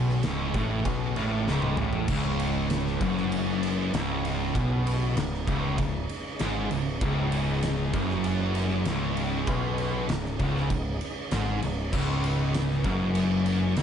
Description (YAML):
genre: stoner and doom metal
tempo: 98 BPM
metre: 4/4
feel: straight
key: unclear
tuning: A4 = 439 Hz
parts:
  - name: bright tonewheel organ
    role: sustained chords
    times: 0.0-13.8 s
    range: C#3 to D#4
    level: -39 LUFS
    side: right 1 dB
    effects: none
  - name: overdriven electric guitar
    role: riff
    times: 0.0-13.8 s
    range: C#2 to B2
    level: -31 LUFS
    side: equal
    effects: none
  - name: thick fuzz guitar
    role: riff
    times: 0.0-13.8 s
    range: C#2 to B2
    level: -30 LUFS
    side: left 7 dB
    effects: distortion
  - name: thick fuzz guitar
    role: riff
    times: 0.0-13.8 s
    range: C#2 to B2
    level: -32 LUFS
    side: right 6 dB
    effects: distortion
  - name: growling picked electric bass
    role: bass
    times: 0.0-13.8 s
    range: C#1 to B1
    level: -33 LUFS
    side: equal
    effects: overdrive
  - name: oversized low-tuned drum kit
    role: drums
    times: 0.1-13.8 s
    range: crash cymbal, kick drum, ride cymbal, snare drum, toms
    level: -32 LUFS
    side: equal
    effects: none
room: light reverb, small room ambience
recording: nothing above 11.0 kHz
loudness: -25 LUFS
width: side -8 dB against mid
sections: 0.0-2.1 A section; 2.1-13.8 B section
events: drum fill 1.5-2.1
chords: 0.0 C#5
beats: 0.25 0.86 1.48 | 2.10 2.71 3.33 3.94 | 4.56 5.17 5.79 6.40 | 7.02 7.63 8.25 8.86 | 9.47 10.09 10.70 11.32 | 11.93 12.54 13.16 13.77